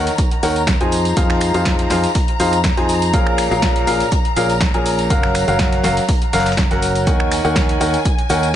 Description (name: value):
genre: piano house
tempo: 122 BPM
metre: 4/4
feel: swing 53% on 16ths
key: Eb dorian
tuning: A4 = 440 Hz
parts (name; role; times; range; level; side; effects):
- warm symphonic violin section; sustained chords; 0.0-8.6 s; Ab5 to Bb5; -24 LUFS; left 3 dB; sidechain pumping
- clear upright piano; riff; 0.0-8.5 s; Bb2 to Ab5; -18 LUFS; equal; sidechain pumping, dub echo
- fingered electric bass; bass; 0.0-8.6 s; Gb1 to F2; -22 LUFS; equal; sidechain pumping
- dusty soul sampler-style drum kit; drums; 0.1-8.4 s; hi-hat, shaker, snare drum; -32 LUFS; equal; none
- punchy analog drum machine; drums; 0.1-8.5 s; finger snaps, hi-hat, snare drum, tambourine; -24 LUFS; equal; none
- tambourine; percussion; 0.1-8.5 s; none; -35 LUFS; right 3 dB; none
- electronic kick drum; drums; 0.2-8.2 s; none; -18 LUFS; equal; none
room: little or no reverb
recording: nothing above 10.7 kHz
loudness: -14 LUFS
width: side -11 dB against mid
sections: 0.0-8.6 A section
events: none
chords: 0.0 Ebm7; 0.9 Fm7; 3.1 Bbm7; 5.1 Gbmaj7; 7.1 Ebm7